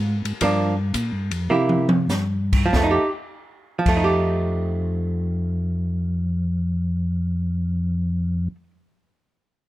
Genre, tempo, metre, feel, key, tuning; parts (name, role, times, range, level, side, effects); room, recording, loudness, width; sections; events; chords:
soul jazz organ trio; 90-120 BPM; 4/4; swing 68% on 8ths; F mixolydian; A4 = 440 Hz
mellow tonewheel organ; bass; 0.0-8.5 s; F2 to C3; -22 LUFS; left 1 dB; chorus vibrato, slow rotary speaker
open jazz drum kit; drums; 0.3-4.0 s; crash cymbal, hi-hat, kick drum, ride cymbal, snare drum, toms; -24 LUFS; equal
archtop guitar, miked and amplified; accompaniment; 0.4-8.7 s; F3 to G4; -22 LUFS; right 2 dB
light reverb; -20 LUFS; side -16 dB against mid
0.0-2.7 A section; 2.7-8.1 B section
slowing down 0.0-2.7; drum fill 1.5-2.1
0.4 Gm7; 1.5 C7; 2.7 F9